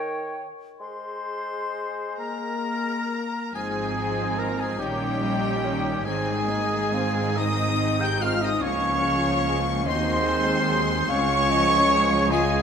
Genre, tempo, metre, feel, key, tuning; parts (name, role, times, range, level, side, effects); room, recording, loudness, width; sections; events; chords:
classical, slow romantic movement for symphony orchestra; 41-50 BPM (dotted quarters); 6/8; rubato; Ab major; A4 = 440 Hz
concert flute; second line; 0.0-12.6 s; G5 to G6; -31 LUFS; right 1 dB
mellow clarinet; second line; 0.0-12.6 s; Ab4 to F5; -34 LUFS; left 2 dB
warm oboe; second line; 0.0-12.6 s; G4 to G5; -31 LUFS; right 1 dB
warm bassoon; accompaniment; 0.0-3.2 s; Eb3 to Ab3; -38 LUFS; right 1 dB
clear chamber violin section; melody; 2.2-12.6 s; G5 to G6; -30 LUFS; left 4 dB
dark French horn section; sustained chords; 2.2-12.6 s; G3 to G4; -30 LUFS; left 3 dB
clear trumpet section; stabs; 2.2-12.6 s; G4 to G5; -30 LUFS; right 1 dB
rich studio violin section; second line; 3.5-12.6 s; C4 to Ab4; -32 LUFS; left 7 dB
clear symphonic viola section; accompaniment; 3.5-12.6 s; Eb3 to Db4; -30 LUFS; right 1 dB
rich symphonic cello section; bass; 3.5-12.6 s; Db2 to Bb2; -31 LUFS; right 4 dB
rich symphonic double bass section; bass; 3.5-12.6 s; Ab1 to Eb2; -31 LUFS; right 4 dB
warm trombone section; sustained chords; 4.4-12.0 s; Eb3 to Db4; -36 LUFS; right 2 dB
wet scoring stage reverb, RT60 1.9 s; minimal, uncompressed stereo recording; -22 LUFS; side -7 dB against mid
0.0-3.5 A section; 3.5-12.6 A section
0.0 Eb7; 0.8 Ab; 4.8 Eb7/Bb; 6.1 Ab; 8.6 Db; 9.9 Ab7/Eb; 11.1 Db